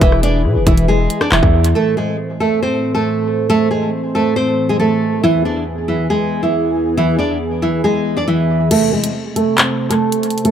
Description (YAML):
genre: hip hop, drill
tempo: 138 BPM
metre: 4/4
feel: half-time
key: A harmonic minor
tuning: A4 = 440 Hz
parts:
  - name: nylon-string guitar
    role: melody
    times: 0.0-10.5 s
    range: E3 to D5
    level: -15 LUFS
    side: right 1 dB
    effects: low-pass filter, analog delay
  - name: warm analog pad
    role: sustained chords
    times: 0.0-10.5 s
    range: E2 to C5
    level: -22 LUFS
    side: left 1 dB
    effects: chorus
  - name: hard-hitting 808-style bass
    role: bass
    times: 0.0-1.7 s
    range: E1 to B2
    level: -15 LUFS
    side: equal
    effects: none
  - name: drill drum kit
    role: drums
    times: 0.0-1.7, 8.7-10.5 s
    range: crash cymbal, handclaps, hi-hat, kick drum, rim click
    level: -16 LUFS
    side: left 1 dB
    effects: none
room: light reverb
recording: echo-heavy mix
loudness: -13 LUFS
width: side -9 dB against mid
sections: 0.0-1.8 A section; 1.8-8.7 B section; 8.7-10.5 C section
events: kick muted 8.7-10.5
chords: 0.0 E; 1.8 Am; 5.2 E; 8.7 Am